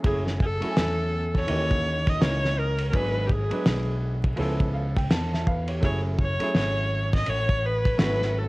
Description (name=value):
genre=hip hop, jazz-hop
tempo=83 BPM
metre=4/4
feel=swing 62% on 16ths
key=F# dorian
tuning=A4 = 440 Hz
part: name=warm grand piano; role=accompaniment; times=0.0-8.5 s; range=E3 to A5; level=-32 LUFS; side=right 1 dB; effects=cassette tape
part: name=fretless electric bass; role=bass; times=0.0-8.5 s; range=F#1 to E2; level=-27 LUFS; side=equal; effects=ensemble chorus
part: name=cloth-damped thuddy drum kit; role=drums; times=0.0-8.3 s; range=hi-hat, kick drum, ride cymbal, snare drum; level=-26 LUFS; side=equal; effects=none
part: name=clear viola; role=melody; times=0.1-8.5 s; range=G4 to D#5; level=-28 LUFS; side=equal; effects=cassette tape, analog delay
room=light reverb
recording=home recording on cassette, vinyl crackle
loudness=-22 LUFS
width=side -21 dB against mid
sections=0.0-8.5 A section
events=grand piano fill 4.4-5.8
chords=0.0 F#m9; 1.5 D#7b9; 2.9 G#m7b5; 4.4 C#7alt; 5.8 F#m9